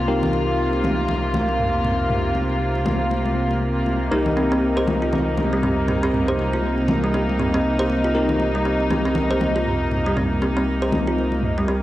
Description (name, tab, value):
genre	afro house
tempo	119 BPM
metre	4/4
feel	swing 59% on 16ths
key	C minor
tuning	A4 = 440 Hz
part	dark studio string section	sustained chords	0.0-11.8 s	C3 to F4	-22 LUFS	equal	none
part	bell-like tine electric piano	stabs	0.0-11.8 s	C4 to Bb4	-27 LUFS	left 1 dB	wide subtle chorus, low-pass filter, analog delay
part	warm sub bass	bass	0.0-11.8 s	C2	-26 LUFS	equal	none
part	congas	percussion	0.1-11.7 s	none	-28 LUFS	left 1 dB	none
part	electronic toms	drums	1.6-2.2, 5.6-11.5 s	none	-28 LUFS	right 1 dB	overdrive, low-pass filter on toms, cassette tape, low-pass filter on room
part	kalimba	arpeggios	4.1-11.8 s	G3 to C5	-23 LUFS	right 1 dB	analog delay
room	light reverb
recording	home recording on cassette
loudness	-18 LUFS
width	side -15 dB against mid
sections	0.0-11.8 A section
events	filter sweep on tine electric piano 0.0-11.8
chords	0.0 Cm7